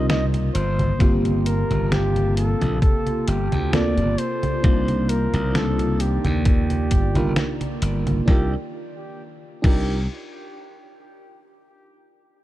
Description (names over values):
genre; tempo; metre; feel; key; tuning
vaporwave; 66 BPM; 4/4; swing 54% on 16ths; C dorian; A4 = 439 Hz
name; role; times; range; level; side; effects
mellow flugelhorn; melody; 0.0-10.1 s; G4 to Eb5; -29 LUFS; equal; vintage 12-bit sampler grit, tape echo
mellow FM electric piano; accompaniment; 0.0-10.0 s; Bb3 to Bb4; -26 LUFS; right 1 dB; tremolo, lush chorus, cassette tape, analog delay
warbly tape-like pad; sustained chords; 0.0-8.7 s; C3 to A5; -32 LUFS; left 2 dB; chorus, built-in reverb, phaser
glassy slap bass; bass; 0.0-10.1 s; G1 to Eb2; -22 LUFS; equal; none
detuned 8-bit digital drum machine; drums; 0.1-9.8 s; congas, crash cymbal, hi-hat, snare drum; -26 LUFS; equal; studio ambience
electronic kick drum; drums; 1.0-9.8 s; none; -17 LUFS; equal; studio ambience
room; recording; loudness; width
digital ambience; dark, warm production; -18 LUFS; side -15 dB against mid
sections
0.0-8.3 A section; 8.3-11.9 B section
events
none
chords
0.0 Cm11; 0.5 Gm11; 4.6 Cm11